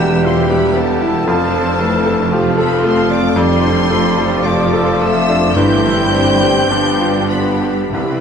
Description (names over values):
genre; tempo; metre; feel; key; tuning
classical; 47-58 BPM; 4/4; rubato; unclear; A4 = 441 Hz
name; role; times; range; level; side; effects
clear baby grand piano; melody; 0.0-8.2 s; C2 to A4; -16 LUFS; left 2 dB; none
rich symphonic violin section; melody; 0.0-8.2 s; A5 to G6; -23 LUFS; left 1 dB; none
mellow flute section; second line; 0.0-8.2 s; A4 to G5; -23 LUFS; left 2 dB; none
warm oboe; second line; 0.0-8.2 s; C5 to G5; -25 LUFS; right 2 dB; none
warm symphonic violin section; second line; 0.0-8.2 s; C4 to A4; -24 LUFS; left 2 dB; none
clear symphonic viola section; accompaniment; 0.0-8.2 s; E3 to D4; -24 LUFS; equal; none
warm bassoon; accompaniment; 0.0-8.2 s; E3 to G3; -22 LUFS; right 2 dB; none
dark French horn section; sustained chords; 0.0-8.2 s; E4 to C5; -22 LUFS; left 4 dB; none
dark tuba; bass; 0.0-8.2 s; E1 to C2; -24 LUFS; right 4 dB; none
rich symphonic double bass section; bass; 0.0-8.2 s; E1 to C2; -23 LUFS; right 4 dB; none
warm symphonic cello section; bass; 0.0-8.2 s; E2 to C3; -23 LUFS; right 4 dB; none
timpani; percussion; 5.6-8.2 s; G2 to C3; -25 LUFS; left 1 dB; none
room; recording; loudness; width
wet concert hall reverb, RT60 2.1 s; dark, warm production; -12 LUFS; side -7 dB against mid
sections
0.0-8.2 A section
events
none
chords
0.0 Em; 1.3 F; 3.4 Dm/F; 5.6 C/G; 6.7 G7